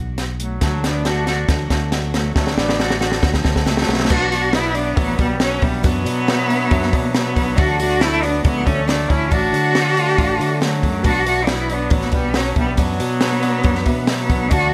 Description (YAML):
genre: indie folk with a building arrangement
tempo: 138 BPM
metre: 4/4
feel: straight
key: unclear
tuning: A4 = 440 Hz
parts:
  - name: fingered electric bass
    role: bass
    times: 0.0-14.7 s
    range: A1 to D3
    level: -25 LUFS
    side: equal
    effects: none
  - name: compact cocktail drum kit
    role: drums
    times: 0.2-14.6 s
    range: crash cymbal, hi-hat, kick drum, snare drum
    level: -22 LUFS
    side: equal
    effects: none
  - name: warm cello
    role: melody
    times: 0.4-14.7 s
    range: A3 to F#4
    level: -23 LUFS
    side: equal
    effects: digital delay
  - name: warm trumpet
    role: second line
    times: 0.4-14.7 s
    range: F#3 to D4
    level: -28 LUFS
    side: equal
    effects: none
  - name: picked twelve-string acoustic guitar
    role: accompaniment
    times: 0.6-14.7 s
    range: B2 to F#4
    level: -32 LUFS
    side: equal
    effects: none
  - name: warm upright piano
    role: accompaniment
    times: 0.6-14.7 s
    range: B1 to E5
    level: -31 LUFS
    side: equal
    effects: none
room: light reverb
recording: none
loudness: -18 LUFS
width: mono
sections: 0.0-4.1 A section; 4.1-14.7 B section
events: build-up 0.0-4.1; drum fill 0.0-4.1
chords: 0.0 B5; 0.6 D; 4.1 Bm; 7.6 D; 11.0 Bm